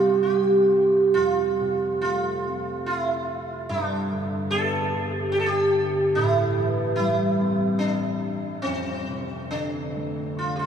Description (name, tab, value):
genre	celtic folk, Celtic slow air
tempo	72 BPM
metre	3/4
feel	uneven beats, rubato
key	unclear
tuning	A4 = 440 Hz
part	sitar	melody	0.0-10.7 s	C4 to A4	-22 LUFS	right 2 dB	none
part	concert harp	accompaniment	0.0-10.7 s	F2 to C4	-27 LUFS	left 1 dB	none
room	wet cathedral reverb, RT60 6.9 s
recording	in a vast, echoing space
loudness	-21 LUFS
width	side -8 dB against mid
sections	0.0-1.1 A section; 1.1-10.7 B section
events	none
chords	0.0 C5; 1.1 F; 3.7 G; 6.2 Am7; 8.6 F6